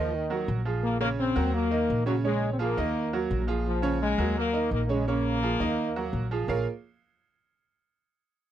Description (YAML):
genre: latin, salsa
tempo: 170 BPM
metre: 4/4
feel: straight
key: Bb minor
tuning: A4 = 440 Hz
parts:
  - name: bright trombone section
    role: melody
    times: 0.0-6.3 s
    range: Eb3 to C4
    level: -28 LUFS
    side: left 2 dB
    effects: none
  - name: bright concert grand piano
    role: accompaniment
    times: 0.0-6.7 s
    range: Db3 to F5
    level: -30 LUFS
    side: right 6 dB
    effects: none
  - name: upright bass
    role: bass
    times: 0.0-6.6 s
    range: Bb1 to Eb2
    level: -30 LUFS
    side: left 1 dB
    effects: none
room: light reverb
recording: dry, close 1970s-style studio recording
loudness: -25 LUFS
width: side -11 dB against mid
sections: 0.0-6.5 A section; 6.5-7.9 B section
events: none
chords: 0.1 Ebmadd9; 0.8 Bbm7; 1.5 Ebm; 2.2 Bbm7; 3.0 Ebmadd9; 3.7 Bbm7; 4.4 Ebm; 5.1 Bbm7; 5.8 Ebmadd9; 6.5 Bbm7